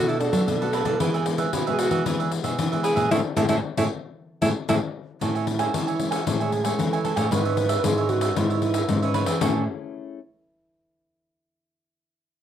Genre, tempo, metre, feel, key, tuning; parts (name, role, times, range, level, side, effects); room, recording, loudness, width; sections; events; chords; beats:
samba and choro; 114 BPM; 4/4; straight; A major; A4 = 439 Hz
breathy alto saxophone; melody; 0.0-4.8 s; D4 to G#4; -25 LUFS; right 1 dB; cassette tape
breathy mellow long shakuhachi; second line; 0.0-9.7 s; C#4 to B4; -28 LUFS; right 6 dB; cassette tape
cavaquinho; accompaniment; 0.0-9.6 s; D4 to G#5; -29 LUFS; right 8 dB; cassette tape
nylon-string guitar; accompaniment; 0.0-10.2 s; A2 to B4; -32 LUFS; left 7 dB; cassette tape
nylon-string guitar; bass; 0.0-9.7 s; G#2 to F#3; -27 LUFS; equal
pandeiro; percussion; 0.1-9.5 s; -27 LUFS; left 8 dB
moderate small room reverb, RT60 0.6 s; home recording on cassette; -21 LUFS; side -10 dB against mid
0.0-5.2 A section; 5.2-9.4 B section; 9.4-11.5 C section
band accent 3.1-5.2
0.0 Bm7; 1.0 E; 3.1 Amaj7; 7.3 C#m7/G#; 9.4 Amaj7
0.48 | 1.01 1.53 2.06 2.59 | 3.11 3.64 4.16 4.69 | 5.21 5.74 6.27 6.79 | 7.32 7.84 8.37 8.89 | 9.42 9.94